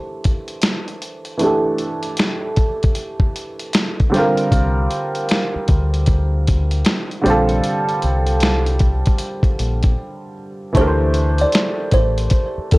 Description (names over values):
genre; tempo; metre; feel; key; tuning
lo-fi hip hop; 77 BPM; 4/4; swing 64% on 16ths; D minor; A4 = 439 Hz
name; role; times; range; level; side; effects
warm upright piano; accompaniment; 0.0-12.8 s; D3 to C5; -21 LUFS; right 1 dB; cassette tape, low-pass filter
dusty soul sampler-style drum kit; drums; 0.2-12.8 s; finger snaps, hi-hat, kick drum, snare drum; -18 LUFS; equal; none
deep dub fingered electric bass; bass; 4.5-12.8 s; A1 to E2; -18 LUFS; equal; transformer saturation
kalimba; melody; 10.8-12.8 s; A4 to D5; -21 LUFS; equal; none
room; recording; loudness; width
moderate small room reverb, RT60 0.6 s; worn, warbling old tape, cassette tape, warbly pitch drift; -15 LUFS; side -22 dB against mid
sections
0.0-10.8 A section; 10.8-12.8 B section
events
filter sweep on upright piano 0.0-10.8; break 10.0-10.8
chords
0.0 Dsus2; 4.1 Csus2; 10.8 Dsus2